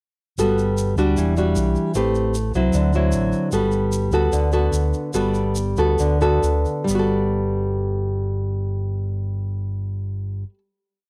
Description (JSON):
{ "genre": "bossa nova", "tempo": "129-153 BPM", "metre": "4/4", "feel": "straight", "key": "G major", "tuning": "A4 = 439 Hz", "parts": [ { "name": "nylon-string guitar", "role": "accompaniment", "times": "0.4-10.6 s", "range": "D3 to B4", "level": "-23 LUFS", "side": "equal", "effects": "cassette tape" }, { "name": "fingered electric bass", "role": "bass", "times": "0.4-10.4 s", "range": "E1 to D2", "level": "-25 LUFS", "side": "equal", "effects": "none" }, { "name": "tube shaker", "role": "percussion", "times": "0.4-7.0 s", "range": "none", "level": "-38 LUFS", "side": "equal", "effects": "none" } ], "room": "moderate studio reverb, RT60 0.6 s", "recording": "home recording on cassette", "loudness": "-21 LUFS", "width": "mono", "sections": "0.4-6.9 A section; 6.9-10.6 final chord", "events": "slowing down 3.5-6.9", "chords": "0.4 Gmaj9; 1.2 Em9; 2.0 Am9; 2.7 D9; 3.5 Gmaj9" }